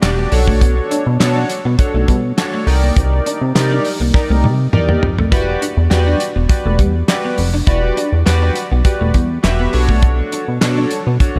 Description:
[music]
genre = early-eighties boogie funk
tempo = 102 BPM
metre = 4/4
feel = straight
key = E minor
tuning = A4 = 440 Hz
[part]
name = chorused polysynth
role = accompaniment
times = 0.0-11.4 s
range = D4 to E5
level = -22 LUFS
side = equal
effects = slapback echo
[part]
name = chorused synth bass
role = bass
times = 0.0-11.4 s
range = E1 to C3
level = -18 LUFS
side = equal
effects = none
[part]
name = damped 70s drum kit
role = drums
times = 0.0-11.3 s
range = handclaps, hi-hat, kick drum, snare drum, toms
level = -19 LUFS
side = equal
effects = none
[part]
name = clean electric guitar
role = riff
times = 0.2-11.4 s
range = G3 to E4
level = -27 LUFS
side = equal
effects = ensemble chorus
[sound]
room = light reverb, studio reverb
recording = none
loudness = -15 LUFS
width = mono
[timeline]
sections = 0.0-11.4 A section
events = drum fill 4.1-5.3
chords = 0.3 Bm9; 2.7 Cm9; 5.3 Em9; 9.7 Bm9

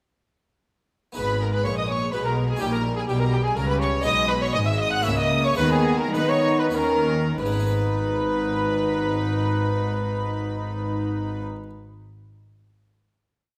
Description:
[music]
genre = classical, baroque-style concerto movement with solo episodes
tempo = 92-126 BPM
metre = 3/4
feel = straight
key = G# minor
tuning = A4 = 440 Hz
[part]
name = harpsichord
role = accompaniment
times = 1.1-11.7 s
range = G#2 to B4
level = -36 LUFS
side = equal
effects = none
[part]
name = mellow trumpet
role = melody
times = 1.2-11.4 s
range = G4 to F#5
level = -30 LUFS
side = equal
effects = none
[part]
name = rich chamber violin section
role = melody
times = 1.2-11.4 s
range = G5 to F#6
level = -33 LUFS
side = equal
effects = none
[part]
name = rich chamber violin section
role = second line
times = 1.2-11.4 s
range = G4 to F#5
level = -32 LUFS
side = equal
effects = none
[part]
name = dark chamber viola section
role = accompaniment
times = 1.2-11.4 s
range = G3 to D#4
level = -32 LUFS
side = equal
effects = none
[part]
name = dark chamber cello section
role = bass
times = 1.2-11.4 s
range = G#2 to D#4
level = -31 LUFS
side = equal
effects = none
[part]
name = rich chamber double bass section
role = bass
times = 1.2-11.4 s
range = G#1 to D#3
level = -30 LUFS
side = equal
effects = none
[sound]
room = wet recital hall reverb, RT60 1.6 s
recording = none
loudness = -23 LUFS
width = mono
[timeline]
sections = 1.2-7.4 ritornello; 7.4-11.3 final chord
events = slowing down 3.3-7.4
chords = 1.2 G#m; 2.6 D#7/A#; 4.1 G#m/B; 5.1 A#dim/C#; 5.6 G#m/D#; 6.7 D#5; 7.4 G#m

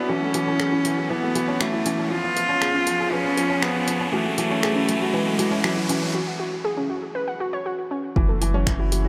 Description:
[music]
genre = piano and strings electronica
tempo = 119 BPM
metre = 4/4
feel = straight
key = F# minor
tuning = A4 = 442 Hz
[part]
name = clear cello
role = melody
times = 0.0-6.1 s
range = F#3 to E#4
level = -26 LUFS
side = equal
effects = none
[part]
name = warm string quartet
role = sustained chords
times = 0.0-9.1 s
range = E#3 to A4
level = -35 LUFS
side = equal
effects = sidechain pumping, low-pass filter
[part]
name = warbly dusty pluck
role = arpeggios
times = 0.0-9.0 s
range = F#3 to F#5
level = -31 LUFS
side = equal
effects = chorus, sidechain pumping, digital delay
[part]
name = felt-muted upright piano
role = riff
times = 0.0-9.1 s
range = E3 to A4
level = -29 LUFS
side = equal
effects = none
[part]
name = riser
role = sound effects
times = 0.0-6.1 s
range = none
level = -34 LUFS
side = equal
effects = none
[part]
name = deep house drum kit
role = drums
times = 0.3-9.0 s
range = finger snaps, hi-hat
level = -31 LUFS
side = equal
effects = none
[part]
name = round analog bass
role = bass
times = 8.2-9.1 s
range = F#1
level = -25 LUFS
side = equal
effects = sidechain pumping
[part]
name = electronic kick drum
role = drums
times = 8.2-8.8 s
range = none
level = -24 LUFS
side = equal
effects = none
[sound]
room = moderate huge ambient reverb, RT60 5.3 s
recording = none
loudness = -23 LUFS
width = mono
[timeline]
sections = 0.0-8.2 A section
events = build-up 0.0-8.2; riser 0.0-6.1; filter sweep on string quartet 0.0-8.2; filter sweep on synth arpeggio sound 0.0-8.2; break 6.1-8.2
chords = 0.1 F#m7; 2.1 C#7/E#; 4.1 F#m7; 6.1 N.C.; 8.2 F#m7

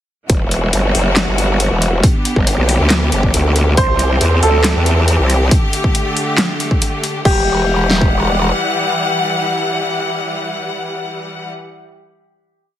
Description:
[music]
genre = heavy wobble dubstep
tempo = 138 BPM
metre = 4/4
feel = half-time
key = E minor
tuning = A4 = 440 Hz
[part]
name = bright studio string section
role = sustained chords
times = 0.3-11.5 s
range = D3 to F#5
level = -19 LUFS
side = left 1 dB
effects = sidechain pumping
[part]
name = growl bass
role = bass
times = 0.3-8.5 s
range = E1 to E2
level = -14 LUFS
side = equal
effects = chorus, overdrive
[part]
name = dubstep drum kit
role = drums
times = 0.3-8.1 s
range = kick drum, snare drum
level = -15 LUFS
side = equal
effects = none
[part]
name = dubstep drum kit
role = drums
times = 0.3-7.3 s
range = crash cymbal, handclaps, hi-hat, snare drum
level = -18 LUFS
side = left 1 dB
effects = none
[part]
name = clear concert grand piano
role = melody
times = 3.8-11.6 s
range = G4 to C5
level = -20 LUFS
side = equal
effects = tape echo
[sound]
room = light reverb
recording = heavily compressed radio sound, multiband compression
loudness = -12 LUFS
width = side -12 dB against mid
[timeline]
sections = 0.3-7.3 drop; 7.3-10.7 final chord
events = drop 0.3-7.3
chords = 0.3 Emadd9; 2.0 G; 3.8 C; 5.5 Dsus4; 7.3 Emadd9

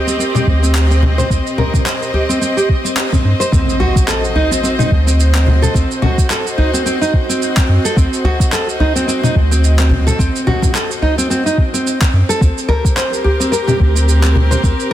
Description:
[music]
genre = organic downtempo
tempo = 108 BPM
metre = 4/4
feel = swing 56% on 16ths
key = D phrygian dominant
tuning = A4 = 443 Hz
[part]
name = warm chamber string section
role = sustained chords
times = 0.0-14.9 s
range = C4 to Eb5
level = -22 LUFS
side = right 1 dB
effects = sidechain pumping
[part]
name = nylon-string guitar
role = arpeggios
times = 0.0-14.9 s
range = C4 to C5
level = -18 LUFS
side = equal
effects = tape echo
[part]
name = electronic shaker, congas and handclaps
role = drums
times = 0.1-14.9 s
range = none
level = -20 LUFS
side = equal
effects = soft clipping on snare
[part]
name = round analog bass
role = bass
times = 0.5-14.7 s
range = D2 to G2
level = -12 LUFS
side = equal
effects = sidechain pumping
[part]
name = electronic kick drum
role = drums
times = 0.5-14.8 s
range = none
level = -14 LUFS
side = equal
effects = none
[part]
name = udu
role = percussion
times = 1.0-14.5 s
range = none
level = -18 LUFS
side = equal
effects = none
[part]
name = impact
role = sound effects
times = 3.5-5.7 s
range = none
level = -22 LUFS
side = equal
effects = none
[sound]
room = light reverb, small room ambience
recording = dense, heavily limited modern master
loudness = -12 LUFS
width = side -12 dB against mid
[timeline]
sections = 0.0-3.5 A section; 3.5-14.9 B section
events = impact 3.5-5.7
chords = 0.0 Cm/D; 3.5 D7b9; 12.4 C5/D

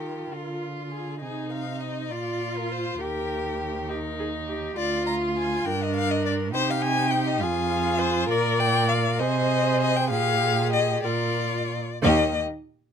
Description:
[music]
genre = quick classical-period movement for string quartet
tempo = 67 BPM (dotted quarters)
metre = 6/8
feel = rubato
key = Eb major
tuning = A4 = 439 Hz
[part]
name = warm violin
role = melody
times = 0.0-12.4 s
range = Ab4 to Bb5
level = -27 LUFS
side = left 5 dB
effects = none
[part]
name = rich violin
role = second line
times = 0.0-12.4 s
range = Eb4 to Bb4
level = -30 LUFS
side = left 3 dB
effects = none
[part]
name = rich viola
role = accompaniment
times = 0.0-12.4 s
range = Bb3 to D5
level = -29 LUFS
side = right 3 dB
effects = none
[part]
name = warm cello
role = bass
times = 0.0-12.4 s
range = D2 to Eb3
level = -28 LUFS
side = right 4 dB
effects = none
[sound]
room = little or no reverb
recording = close, detailed microphones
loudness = -23 LUFS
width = side -7 dB against mid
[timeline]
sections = 0.0-12.0 A section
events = none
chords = 0.0 Bb; 1.2 Cmadd11; 2.1 Bb; 3.0 Eb; 4.8 Ddim; 5.7 Gm; 6.5 Cm; 7.4 Fm; 8.3 Bb; 9.2 Ab/C; 10.1 Bb5; 11.0 Bb; 12.0 Eb

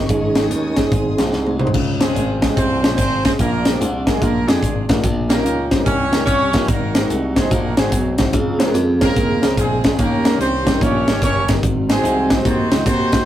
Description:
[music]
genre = uptempo gospel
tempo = 146 BPM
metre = 4/4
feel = swing 65% on 8ths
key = Db major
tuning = A4 = 444 Hz
[part]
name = warm grand piano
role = accompaniment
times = 0.0-13.2 s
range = Ab2 to Eb5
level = -24 LUFS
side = left 2 dB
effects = none
[part]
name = mellow tonewheel organ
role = sustained chords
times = 0.0-1.6, 8.3-13.2 s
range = Db3 to C5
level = -22 LUFS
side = right 3 dB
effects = chorus vibrato, stopped rotary speaker
[part]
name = warm studio string section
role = sustained chords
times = 0.0-1.7 s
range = Eb5 to Eb6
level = -31 LUFS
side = left 1 dB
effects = none
[part]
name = glassy slap bass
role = bass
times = 0.0-13.2 s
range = Gb1 to F2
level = -21 LUFS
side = equal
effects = none
[part]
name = crisp fusion drum kit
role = drums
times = 0.1-13.2 s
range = crash cymbal, hi-hat, kick drum, snare drum, toms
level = -18 LUFS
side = equal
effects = none
[part]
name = mellow horn section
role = melody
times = 2.0-13.2 s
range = Ab3 to Db5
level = -21 LUFS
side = right 1 dB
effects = none
[sound]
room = moderate booth ambience, RT60 0.2 s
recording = rough rehearsal-room recording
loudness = -15 LUFS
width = side -12 dB against mid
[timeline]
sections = 0.0-1.7 A section; 1.7-13.3 B section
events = tonewheel organ solo 0.0-1.7; drum fill 1.3-1.7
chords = 0.1 Absus4; 0.9 Ab; 1.7 Dbmaj7; 3.4 Bb7; 5.0 Eb7/Bb; 6.7 Ab7; 8.3 Dbmaj7; 10.0 Eb7; 11.6 Ab7

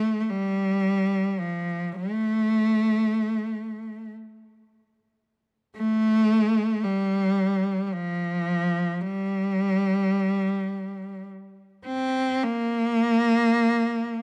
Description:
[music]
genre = caucasian folk, Caucasian lament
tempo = free time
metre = none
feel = none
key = G minor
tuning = A4 = 439 Hz
[part]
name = clear cello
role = solo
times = 0.0-14.2 s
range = F3 to C4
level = -25 LUFS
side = equal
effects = none
[sound]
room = studio reverb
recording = dry, close 1970s-style studio recording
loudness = -24 LUFS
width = mono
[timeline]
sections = 0.0-12.5 A section; 12.5-14.2 B section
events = none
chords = none

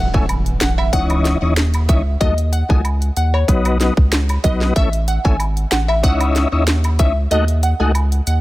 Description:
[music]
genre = dancehall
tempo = 94 BPM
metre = 4/4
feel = straight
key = C# minor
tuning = A4 = 443 Hz
[part]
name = glassy wavetable pluck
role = melody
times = 0.0-8.4 s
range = C#5 to G#5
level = -23 LUFS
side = equal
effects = chorus, tape echo
[part]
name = saturated sub bass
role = bass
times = 0.0-8.4 s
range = G#1 to D#2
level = -17 LUFS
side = equal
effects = none
[part]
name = impact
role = sound effects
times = 0.0-2.2 s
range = none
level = -27 LUFS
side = right 1 dB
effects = none
[part]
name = tonewheel organ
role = accompaniment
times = 0.1-7.9 s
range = E3 to F#4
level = -22 LUFS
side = left 3 dB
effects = chorus vibrato, sidechain pumping
[part]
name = island pop drum kit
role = drums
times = 0.1-8.4 s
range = finger snaps, hi-hat, kick drum, snare drum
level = -18 LUFS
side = equal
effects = none
[part]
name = woodblock and cabasa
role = percussion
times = 0.3-8.4 s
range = none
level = -28 LUFS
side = right 2 dB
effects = none
[sound]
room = digital ambience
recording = none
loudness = -14 LUFS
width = side -17 dB against mid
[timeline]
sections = 0.0-8.4 A section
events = impact 0.0-2.2; kick muted 7.3-8.4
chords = 0.0 A; 0.9 C#madd9; 2.2 D#dim; 3.5 B; 4.8 A; 6.0 C#madd9; 7.3 D#dim

